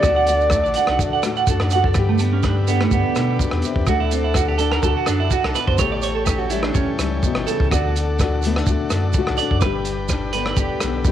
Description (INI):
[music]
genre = highlife guitar band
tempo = 125 BPM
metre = 4/4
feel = swing 54% on 16ths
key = G major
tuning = A4 = 441 Hz
[part]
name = mellow clarinet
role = melody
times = 0.0-1.4 s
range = D5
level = -19 LUFS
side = left 1 dB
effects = cassette tape
[part]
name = flamenco guitar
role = accompaniment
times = 0.0-11.1 s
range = G2 to G4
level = -25 LUFS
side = left 8 dB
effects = cassette tape
[part]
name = combo organ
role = sustained chords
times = 0.0-11.1 s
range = D4 to G5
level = -31 LUFS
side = left 1 dB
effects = cassette tape
[part]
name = clean electric guitar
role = arpeggios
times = 0.0-10.8 s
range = A3 to F#5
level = -22 LUFS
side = right 9 dB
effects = cassette tape, analog delay
[part]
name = pure sine sub bass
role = bass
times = 0.0-11.0 s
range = G1 to B2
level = -23 LUFS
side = equal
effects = none
[part]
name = crunchy breakbeat drum kit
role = drums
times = 0.0-11.1 s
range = hi-hat, kick drum, rim click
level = -23 LUFS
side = equal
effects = cassette tape
[part]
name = shekere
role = percussion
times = 0.0-11.1 s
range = none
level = -27 LUFS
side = right 4 dB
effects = none
[sound]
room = light reverb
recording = home recording on cassette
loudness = -17 LUFS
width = side -10 dB against mid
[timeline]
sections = 0.0-2.0 A section; 2.0-11.1 B section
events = clean electric guitar solo 2.0-11.1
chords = 0.0 D; 2.0 G; 3.9 D; 5.8 A7; 7.7 D; 9.6 G